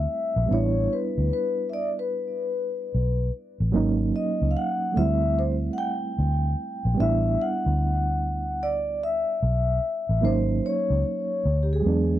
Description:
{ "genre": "R&B, neo-soul", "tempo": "74 BPM", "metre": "4/4", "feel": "swing 64% on 16ths", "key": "A mixolydian", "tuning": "A4 = 441 Hz", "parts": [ { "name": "vibraphone with soft mallets", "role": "melody", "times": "0.0-12.2 s", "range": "G4 to G5", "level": "-27 LUFS", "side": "left 2 dB", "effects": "tape echo" }, { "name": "reed electric piano", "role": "accompaniment", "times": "0.0-12.2 s", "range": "F#3 to E4", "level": "-28 LUFS", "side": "right 5 dB", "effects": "fast tremolo" }, { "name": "vintage muted fingered electric bass", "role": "bass", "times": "0.0-12.2 s", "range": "G#1 to E2", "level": "-24 LUFS", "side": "equal", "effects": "transformer saturation" } ], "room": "little or no reverb", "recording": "dry, close 1970s-style studio recording", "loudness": "-22 LUFS", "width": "side -13 dB against mid", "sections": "0.0-12.2 A section", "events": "none", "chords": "0.5 A9sus4; 3.7 G#9sus4; 5.0 D9sus4; 7.0 A9sus4; 10.2 G#9sus4; 11.4 N.C." }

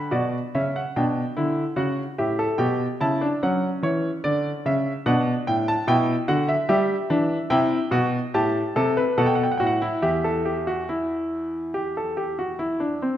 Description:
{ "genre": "classical, baroque-style 3-part fugue for grand piano", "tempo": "73 BPM", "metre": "4/4", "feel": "straight", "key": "G major, E minor from 6.7 s", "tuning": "A4 = 440 Hz", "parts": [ { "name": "clear grand piano", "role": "solo", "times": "0.0-13.2 s", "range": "E2 to B5", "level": "-21 LUFS", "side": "equal", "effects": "none" } ], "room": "moderate recital hall reverb, RT60 1.4 s", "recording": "dark, warm production", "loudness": "-21 LUFS", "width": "side -11 dB against mid", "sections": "0.1-13.2 A section", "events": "none", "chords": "0.1 Gmaj7/B; 1.8 C#dim; 3.4 F#5; 5.1 Bm; 6.7 Em; 8.3 Am9; 9.2 B5; 10.0 Em" }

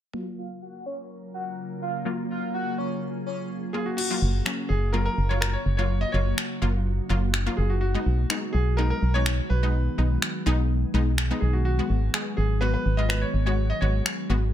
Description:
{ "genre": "dance-pop", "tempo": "125 BPM", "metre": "4/4", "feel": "straight", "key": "F# major", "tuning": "A4 = 441 Hz", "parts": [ { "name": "wide unison pluck", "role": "accompaniment", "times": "0.1-14.5 s", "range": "F#3 to G#4", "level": "-31 LUFS", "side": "left 2 dB", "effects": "low-pass filter" }, { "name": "glassy FM pad", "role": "sustained chords", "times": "0.8-14.5 s", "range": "C#3 to E#5", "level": "-33 LUFS", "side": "equal", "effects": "ensemble chorus, built-in reverb, low-pass filter" }, { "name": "airy dreamy lead", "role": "melody", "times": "0.4-3.4 s", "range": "C#5 to F#5", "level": "-34 LUFS", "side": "right 1 dB", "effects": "chorus, low-pass filter" }, { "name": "clear grand piano", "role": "melody", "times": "3.7-14.3 s", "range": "F#4 to D#5", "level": "-31 LUFS", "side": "equal", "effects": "ping-pong delay" }, { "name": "pop drum kit", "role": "drums", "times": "4.0-14.2 s", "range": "crash cymbal, finger snaps", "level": "-29 LUFS", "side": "left 1 dB", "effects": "overdrive" }, { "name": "organ-like FM bass", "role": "bass", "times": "4.2-14.5 s", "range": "F#1 to B1", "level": "-23 LUFS", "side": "equal", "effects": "none" } ], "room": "digital ambience", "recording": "none", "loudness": "-23 LUFS", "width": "side -11 dB against mid", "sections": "0.1-4.0 A section; 4.0-14.5 B section", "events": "filter sweep 0.1-4.0", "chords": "0.1 F#maj7; 7.8 B6; 11.7 G#m7" }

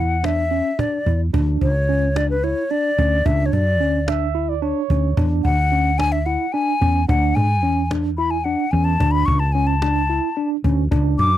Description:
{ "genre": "progressive instrumental, band music in an uneven meter", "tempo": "219 BPM (eighths)", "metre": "7/8", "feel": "straight", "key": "D lydian", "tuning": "A4 = 441 Hz", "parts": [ { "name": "mellow hollow silver concert flute", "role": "melody", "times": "0.0-11.4 s", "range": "B4 to D6", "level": "-21 LUFS", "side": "left 3 dB", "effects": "none" }, { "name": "bright tine electric piano", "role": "arpeggios", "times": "0.0-11.3 s", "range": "C#4 to E4", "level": "-23 LUFS", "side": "right 1 dB", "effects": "medium stereo tremolo" }, { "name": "woody fretless electric bass", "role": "bass", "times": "0.0-11.4 s", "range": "C#2 to G#2", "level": "-20 LUFS", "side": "equal", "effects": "none" }, { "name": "cajon", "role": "drums", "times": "0.2-11.3 s", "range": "none", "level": "-26 LUFS", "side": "equal", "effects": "none" }, { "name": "breathy flugelhorn", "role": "second line", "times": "4.1-5.3 s", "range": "C#5 to E5", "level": "-25 LUFS", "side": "right 16 dB", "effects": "none" } ], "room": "little or no reverb", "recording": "dry, close 1970s-style studio recording", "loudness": "-17 LUFS", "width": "side -12 dB against mid", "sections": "0.0-1.3 A section; 1.3-11.4 B section", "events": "flute solo 1.3-11.4", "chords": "0.0 E5; 1.3 Dmaj7(no3); 5.2 E7; 9.0 Dmaj7(no3)" }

